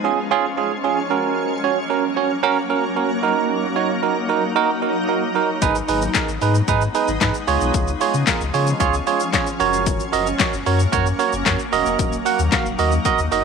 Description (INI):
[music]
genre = dance-pop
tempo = 113 BPM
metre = 4/4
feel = straight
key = unclear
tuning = A4 = 441 Hz
[part]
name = bell-like tine electric piano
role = accompaniment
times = 0.0-13.4 s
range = C#4 to F#5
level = -20 LUFS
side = right 9 dB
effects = sidechain pumping
[part]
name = shimmering ambient pad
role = sustained chords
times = 0.0-13.4 s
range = E#3 to D#4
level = -24 LUFS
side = left 1 dB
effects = chorus, built-in reverb, sidechain pumping
[part]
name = warm sub bass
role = bass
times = 5.6-13.4 s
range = D#1 to C#3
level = -22 LUFS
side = left 2 dB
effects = sidechain pumping
[part]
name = punchy analog drum machine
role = drums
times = 5.6-13.4 s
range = handclaps, hi-hat, kick drum, shaker, snare drum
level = -22 LUFS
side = left 6 dB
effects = none
[part]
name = group handclap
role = percussion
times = 6.2-12.6 s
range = none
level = -34 LUFS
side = left 13 dB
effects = none
[sound]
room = moderate plate reverb, RT60 2.2 s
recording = 1960s-style stereo with parts hard left and right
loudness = -17 LUFS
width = side -5 dB against mid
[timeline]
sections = 0.0-13.4 A section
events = none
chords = 0.0 C#; 1.1 F#; 3.2 D#m; 5.6 G#m; 7.5 C#; 9.6 F#; 11.7 D#m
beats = 0.31 0.84 | 1.37 1.90 2.43 2.96 | 3.50 4.03 4.56 5.09 | 5.62 6.15 6.68 7.21 | 7.74 8.27 8.80 9.34 | 9.87 10.40 10.93 11.46 | 11.99 12.52 13.05